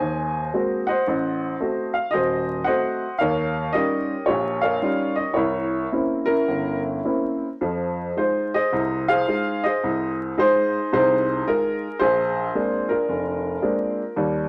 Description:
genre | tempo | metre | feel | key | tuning
solo jazz | 111 BPM | 4/4 | swing 67% on 8ths, rubato | unclear | A4 = 441 Hz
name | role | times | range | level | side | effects
warm upright piano | solo | 0.0-14.5 s | Eb1 to Ab5 | -23 LUFS | equal | none
room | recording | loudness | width
moderate studio reverb, RT60 0.6 s | vinyl crackle | -23 LUFS | mono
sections
0.0-14.5 A section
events
none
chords
0.0 Ab9; 1.1 Adim7; 3.2 Eb9; 5.4 C7b9; 7.6 Fm7; 12.0 Bb9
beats
0.53 | 1.07 1.60 2.14 2.67 | 3.20 3.74 4.28 4.82 | 5.36 5.91 6.48 7.04 | 7.61 8.17 8.72 9.28 | 9.84 10.39 10.94 11.48 | 12.01 12.55 13.08 13.62 | 14.16

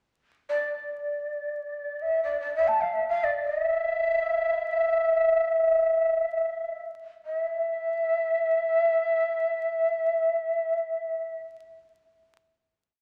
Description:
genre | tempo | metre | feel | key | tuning
japanese traditional, Japanese chamber music | free time | none | none | unclear | A4 = 440 Hz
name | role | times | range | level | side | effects
breathy shakuhachi | solo | 0.5-11.4 s | D5 to A5 | -26 LUFS | equal | none
room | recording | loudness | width
wet recital hall reverb, RT60 1.5 s | vinyl crackle | -26 LUFS | mono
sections
0.0-7.2 free-time section; 7.2-11.9 final note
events
slowing down 3.0-7.2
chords
none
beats
free time

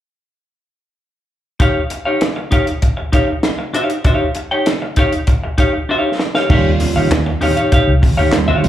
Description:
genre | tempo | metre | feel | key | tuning
funk | 98 BPM | 4/4 | straight | Eb mixolydian | A4 = 438 Hz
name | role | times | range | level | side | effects
semi-hollow electric guitar | accompaniment | 1.6-8.7 s | Eb4 to G5 | -17 LUFS | left 1 dB | slapback echo
compact cocktail drum kit | drums | 1.6-8.7 s | crash cymbal, handclaps, hi-hat, kick drum, snare drum | -16 LUFS | equal | none
mellow tine electric piano | stabs | 6.5-8.7 s | G3 to F4 | -20 LUFS | right 7 dB | phaser
vintage muted fingered electric bass | bass | 6.5-8.7 s | Db2 to Eb2 | -16 LUFS | equal | none
congas | percussion | 6.5-8.6 s | none | -24 LUFS | right 4 dB | none
room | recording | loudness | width
studio ambience | live gig heard through the venue's PA, club reverb | -13 LUFS | side -12 dB against mid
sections
1.6-6.5 A section; 6.5-8.7 B section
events
drum fill 5.9-6.5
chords
1.6 Eb9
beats
| 1.60 2.22 2.83 3.44 | 4.05 4.66 5.28 5.89 | 6.50 7.11 7.72 8.33

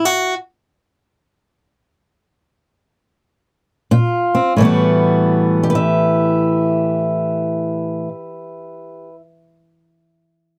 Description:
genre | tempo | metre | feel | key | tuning
blues | free time | none | none | unclear | A4 = 440 Hz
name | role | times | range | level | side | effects
fingerpicked steel-string acoustic guitar | solo | 0.0-0.3, 3.9-9.2 s | A2 to E5 | -17 LUFS | equal | none
room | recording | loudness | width
wet booth ambience, RT60 0.2 s | heard from further back in the room | -17 LUFS | mono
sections
0.0-4.5 A section; 4.5-9.8 B section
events
slowing down 0.0-4.5; stop 0.0-3.9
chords
0.0 A5; 3.9 Bbsus2; 4.5 Asus2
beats
free time

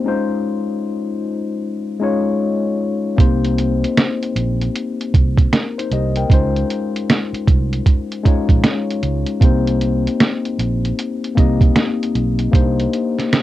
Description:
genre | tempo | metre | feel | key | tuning
lo-fi hip hop | 77 BPM | 4/4 | swing 64% on 16ths | C phrygian | A4 = 440 Hz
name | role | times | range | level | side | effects
tine electric piano | accompaniment | 0.0-13.4 s | Ab3 to G5 | -19 LUFS | left 4 dB | medium stereo tremolo, cassette tape, low-pass filter
fingered electric bass | bass | 3.2-12.9 s | Bb1 to Db2 | -19 LUFS | right 2 dB | none
lo-fi sampler-style drum kit | drums | 3.2-13.4 s | hi-hat, kick drum, snare drum | -14 LUFS | right 2 dB | cassette tape
room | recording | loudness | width
wet booth ambience, RT60 0.2 s | home recording on cassette | -15 LUFS | side -14 dB against mid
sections
0.0-13.4 A section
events
none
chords
0.1 Dbmaj9; 3.2 Cm7; 6.3 Dbmaj9; 9.4 Cm7; 12.5 Cm9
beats
| 0.07 0.84 1.62 2.40 | 3.18 3.96 4.74 5.52 | 6.30 7.08 7.86 8.64 | 9.42 10.20 10.97 11.75 | 12.53 13.31

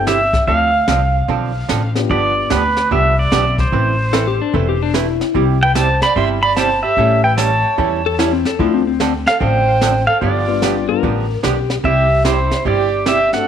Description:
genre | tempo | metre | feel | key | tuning
country, western swing | 148 BPM | 4/4 | swing 65% on 8ths | C major | A4 = 441 Hz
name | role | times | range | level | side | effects
pedal steel guitar | melody | 0.0-13.5 s | B4 to C6 | -16 LUFS | right 1 dB | tape echo
dark upright piano | accompaniment | 0.0-2.5, 5.3-13.5 s | G3 to G4 | -22 LUFS | left 12 dB | none
upright bass | bass | 0.0-13.3 s | E1 to E2 | -19 LUFS | left 1 dB | none
archtop guitar, miked and amplified | accompaniment | 0.1-13.2 s | C3 to B4 | -21 LUFS | right 11 dB | none
jazz brush drum kit | drums | 0.1-13.5 s | brushed snare drum, hi-hat, kick drum, snare drum | -23 LUFS | left 1 dB | none
clean lap steel guitar | second line | 4.1-5.5, 8.1-11.8 s | C4 to Bb4 | -19 LUFS | left 10 dB | none
dark fiddle | second line | 5.6-13.5 s | E4 to E5 | -22 LUFS | right 8 dB | none
room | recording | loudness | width
moderate echo chamber reverb, RT60 1.3 s, small room ambience | 1960s-style stereo with parts hard left and right | -13 LUFS | side -8 dB against mid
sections
0.0-13.5 A section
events
none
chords
0.5 Dm7; 2.1 G7; 3.7 Amadd9; 5.3 C; 7.0 A7; 8.6 Dm7; 10.2 G7; 11.8 C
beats
0.07 | 0.47 0.88 1.29 1.69 | 2.10 2.51 2.91 3.32 | 3.73 4.13 4.54 4.94 | 5.35 5.75 6.16 6.57 | 6.97 7.38 7.79 8.19 | 8.60 9.00 9.41 9.81 | 10.22 10.63 11.03 11.44 | 11.85 12.25 12.66 13.07 | 13.47

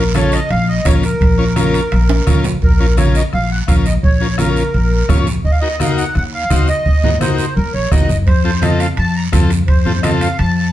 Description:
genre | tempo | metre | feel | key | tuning
latin, cumbia | 170 BPM | 4/4 | straight | Bb harmonic minor | A4 = 441 Hz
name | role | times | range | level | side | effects
accordion | melody | 0.0-10.7 s | Bb4 to Bb5 | -20 LUFS | right 1 dB | light tremolo tuning
combo organ | accompaniment | 0.0-10.3 s | C4 to Db5 | -21 LUFS | left 3 dB | none
upright bass | bass | 0.0-10.7 s | Gb1 to F2 | -16 LUFS | left 1 dB | none
bombo | percussion | 0.1-10.2 s | none | -16 LUFS | right 1 dB | none
congas | percussion | 0.1-10.6 s | none | -20 LUFS | right 2 dB | none
guiro | percussion | 0.1-10.7 s | none | -30 LUFS | right 6 dB | none
timbales | percussion | 0.2-2.5, 8.3-10.6 s | none | -26 LUFS | right 4 dB | none
room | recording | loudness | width
moderate studio reverb, RT60 0.7 s | heard from further back in the room | -12 LUFS | side -13 dB against mid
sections
0.0-2.6 A section; 2.6-10.7 A section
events
drum fill 2.1-2.6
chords
0.0 Bbm; 5.4 Ebm; 8.3 F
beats
0.15 0.51 0.86 | 1.21 1.56 1.92 2.27 | 2.62 2.98 3.33 3.68 | 4.04 4.39 4.74 5.09 | 5.45 5.80 6.15 6.51 | 6.86 7.21 7.57 7.92 | 8.27 8.62 8.98 9.33 | 9.68 10.04 10.39

